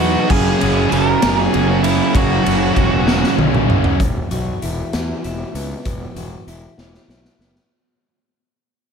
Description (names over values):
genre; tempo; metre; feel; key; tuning
quiet-loud alternative rock; 65 BPM (dotted quarters); 6/8; straight; E lydian; A4 = 440 Hz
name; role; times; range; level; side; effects
smooth overdriven lead guitar; melody; 0.0-3.3 s; E4 to A#5; -21 LUFS; right 2 dB; digital delay
fuzz guitar; riff; 0.0-4.0 s; F#2 to B3; -22 LUFS; left 2 dB; distortion
overdriven electric guitar; riff; 0.0-4.0 s; F#2 to D#4; -20 LUFS; right 13 dB; spring reverb
tight distorted guitar; riff; 0.0-4.0 s; F#2 to D#4; -23 LUFS; left 12 dB; distortion
fuzz fingered electric bass; bass; 0.0-7.6 s; E1 to E2; -22 LUFS; equal; overdrive
raw garage drum kit; drums; 0.3-7.7 s; crash cymbal, hi-hat, kick drum, ride cymbal, snare drum, toms; -20 LUFS; equal; none
electric guitar through a small old amp; arpeggios; 4.0-7.7 s; E2 to F#4; -31 LUFS; left 2 dB; none
room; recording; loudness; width
light reverb, studio ambience; none; -14 LUFS; side -6 dB against mid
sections
0.0-4.0 A section; 4.0-7.7 B section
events
drum fill 3.1-4.0, 6.8-7.7; fade-out 4.0-7.7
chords
0.3 F#add9; 4.0 Esus2